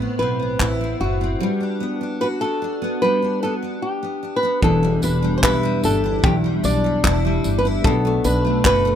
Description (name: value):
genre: acoustic pop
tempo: 74 BPM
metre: 4/4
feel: straight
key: unclear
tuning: A4 = 440 Hz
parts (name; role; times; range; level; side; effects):
- dark baby grand piano; accompaniment; 0.0-9.0 s; G3 to F#5; -33 LUFS; left 6 dB; none
- picked steel-string acoustic guitar; accompaniment; 0.0-9.0 s; E2 to F#4; -22 LUFS; equal; double-tracked left and right
- upright bass; bass; 0.0-9.0 s; E1 to B1; -23 LUFS; equal; none
- flamenco guitar; melody; 0.2-9.0 s; F#4 to D5; -22 LUFS; equal; none
- natural country drum kit; drums; 0.6-8.8 s; handclaps, kick drum, tambourine; -20 LUFS; equal; none
room: small room ambience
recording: rough home demo mix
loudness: -17 LUFS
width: side -9 dB against mid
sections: 0.0-4.6 A section; 4.6-9.0 B section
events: none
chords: 0.0 Amadd9; 1.4 Gmaj7; 4.6 Em7; 7.8 Bm7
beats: 0.60 | 1.41 2.21 3.02 3.82 | 4.63 5.43 6.24 7.04 | 7.84 8.65